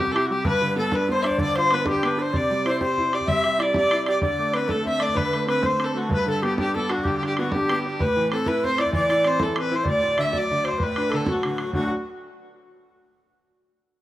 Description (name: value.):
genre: celtic folk, Celtic slide.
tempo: 128 BPM (dotted quarters).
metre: 12/8.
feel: straight.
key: D mixolydian.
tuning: A4 = 439 Hz.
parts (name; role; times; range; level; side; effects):
warm fiddle; melody; 0.0-11.9 s; F#4 to E5; -24 LUFS; left 1 dB; none.
bright baroque flute; second line; 0.0-11.9 s; F#4 to E5; -26 LUFS; equal; none.
bright upright piano; accompaniment; 0.0-11.9 s; D2 to G4; -26 LUFS; equal; none.
bodhran; percussion; 0.1-11.9 s; none; -29 LUFS; right 1 dB; none.
room: moderate plate reverb, RT60 2.6 s.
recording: rough home demo mix.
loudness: -20 LUFS.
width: side -14 dB against mid.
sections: 0.0-11.7 A section; 11.7-13.6 B section.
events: none.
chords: 0.5 G; 2.3 Cadd9; 4.2 D5; 6.1 G; 8.0 Am; 9.9 D.